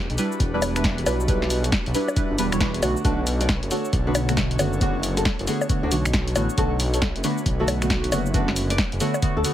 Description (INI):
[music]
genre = UK garage, two-step garage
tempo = 136 BPM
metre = 4/4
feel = swing 63% on 16ths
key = unclear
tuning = A4 = 439 Hz
[part]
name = airy breathy pad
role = sustained chords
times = 0.0-9.5 s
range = D4 to C#5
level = -35 LUFS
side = left 1 dB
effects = chorus, sidechain pumping
[part]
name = dark detuned saw bass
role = bass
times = 0.0-9.4 s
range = E1 to D2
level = -25 LUFS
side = equal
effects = tube saturation, sidechain pumping
[part]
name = punchy analog drum machine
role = drums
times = 0.1-9.5 s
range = bongos, finger snaps, hi-hat, shaker, snare drum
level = -26 LUFS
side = left 1 dB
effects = none
[part]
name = deep mellow chord stab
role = stabs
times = 0.2-9.5 s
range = D3 to C#5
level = -26 LUFS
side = right 1 dB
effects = chorus, phaser, digital delay
[part]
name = electronic kick drum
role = drums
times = 0.4-9.3 s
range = none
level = -24 LUFS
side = equal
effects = none
[part]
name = nylon-string guitar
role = melody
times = 3.0-9.5 s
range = B3 to D5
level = -30 LUFS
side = left 1 dB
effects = none
[sound]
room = light reverb, digital ambience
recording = heavily compressed radio sound, multiband compression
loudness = -20 LUFS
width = side -12 dB against mid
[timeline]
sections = 0.0-9.5 A section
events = none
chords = 0.0 Em7; 2.8 Bm7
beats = 0.40 0.84 | 1.28 1.72 2.17 2.61 | 3.05 3.49 3.93 4.37 | 4.81 5.25 5.69 6.13 | 6.58 7.02 7.46 7.90 | 8.34 8.78 9.22